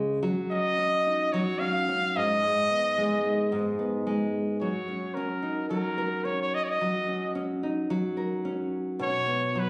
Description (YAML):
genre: pop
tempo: 109 BPM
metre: 4/4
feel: swing 60% on 16ths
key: unclear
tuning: A4 = 440 Hz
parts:
  - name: nylon-string guitar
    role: accompaniment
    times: 0.0-9.7 s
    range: Ab2 to Bb4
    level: -28 LUFS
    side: equal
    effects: none
  - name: clear trumpet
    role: melody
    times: 0.5-9.7 s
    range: Bb4 to F5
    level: -26 LUFS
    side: equal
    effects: none
room: light reverb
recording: recorded on a phone in the room, club reverb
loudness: -25 LUFS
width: side -28 dB against mid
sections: 0.0-4.6 A section; 4.6-9.7 B section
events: none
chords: 0.2 Gb5; 2.1 Abm; 4.6 Gb6; 9.0 Cb